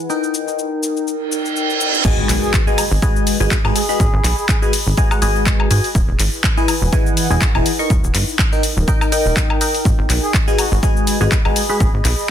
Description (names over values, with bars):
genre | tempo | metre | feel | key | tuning
piano house | 123 BPM | 4/4 | swing 55% on 16ths | G# minor | A4 = 438 Hz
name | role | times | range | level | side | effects
barking FM electric piano | riff | 0.0-11.9 s | E3 to C#6 | -21 LUFS | left 2 dB | phaser, sidechain pumping, dub echo
warbly tape-like pad | texture | 0.0-12.3 s | D#4 to B5 | -26 LUFS | equal | chorus, built-in reverb, sidechain pumping
house drum kit | drums | 0.1-12.3 s | crash cymbal, handclaps, hi-hat, shaker, woodblock | -21 LUFS | left 2 dB | studio reverb
reverse cymbal and impact | sound effects | 1.3-4.0 s | none | -22 LUFS | right 4 dB | none
plucky analog bass | bass | 2.0-12.1 s | D#1 to G#2 | -18 LUFS | equal | sidechain pumping
electronic kick drum | drums | 2.0-11.9 s | none | -17 LUFS | equal | studio reverb
trumpet with bucket mute | melody | 2.4-4.6, 10.2-11.9 s | F#4 to G#4 | -27 LUFS | right 2 dB | dub echo
room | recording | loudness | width
light reverb | dense, heavily limited modern master | -14 LUFS | side -10 dB against mid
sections
0.0-2.0 A section; 2.0-12.3 B section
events
reverse cymbal 1.3-2.0; drop 2.0-12.3; impact 2.0-4.0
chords
0.1 D#; 2.0 G#m7; 6.0 Emaj7; 7.9 D#; 9.9 G#m7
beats
| 0.10 0.58 1.07 1.56 | 2.05 2.54 3.02 3.51 | 4.00 4.49 4.97 5.46 | 5.95 6.44 6.93 7.41 | 7.90 8.39 8.88 9.37 | 9.85 10.34 10.83 11.32 | 11.80 12.29